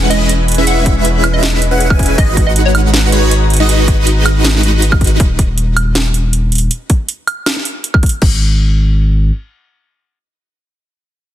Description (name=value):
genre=future bass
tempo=159 BPM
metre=4/4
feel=half-time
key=G# minor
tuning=A4 = 441 Hz
part: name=hollow square pluck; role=melody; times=0.0-2.9 s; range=C#5 to F#5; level=-22 LUFS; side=equal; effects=analog chorus, sidechain pumping, tape echo
part: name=airy breathy pad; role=sustained chords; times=0.0-5.2 s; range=E3 to A#5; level=-23 LUFS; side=right 2 dB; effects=chorus, phaser, sidechain pumping
part: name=airy dreamy lead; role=arpeggios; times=0.0-3.7 s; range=C#5 to G#5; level=-22 LUFS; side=equal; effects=chorus, sidechain pumping, digital delay
part: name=supersaw chords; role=riff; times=0.0-5.2 s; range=G#3 to G#5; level=-16 LUFS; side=right 1 dB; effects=phaser, sidechain pumping, digital delay
part: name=saturated sub bass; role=bass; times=0.0-9.3 s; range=D#1 to G#1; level=-13 LUFS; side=equal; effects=sidechain pumping
part: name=trap drum kit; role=drums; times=0.1-8.3 s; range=crash cymbal, hi-hat, snare drum, woodblock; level=-17 LUFS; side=right 2 dB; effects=overdrive
part: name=electronic kick drum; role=drums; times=0.9-8.3 s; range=none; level=-12 LUFS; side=equal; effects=overdrive
room=light reverb, digital ambience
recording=dense, heavily limited modern master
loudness=-10 LUFS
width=side -12 dB against mid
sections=0.0-8.2 A section; 8.2-11.2 B section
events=drop 0.0-8.2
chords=0.0 C#m7/E; 2.2 G#m7; 5.2 N.C.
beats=0.29 | 0.67 1.05 1.43 1.80 | 2.18 2.56 2.93 3.31 | 3.69 4.07 4.44 4.82 | 5.20 5.58 5.95 6.33 | 6.71 7.08 7.46 7.84 | 8.22 8.60 8.97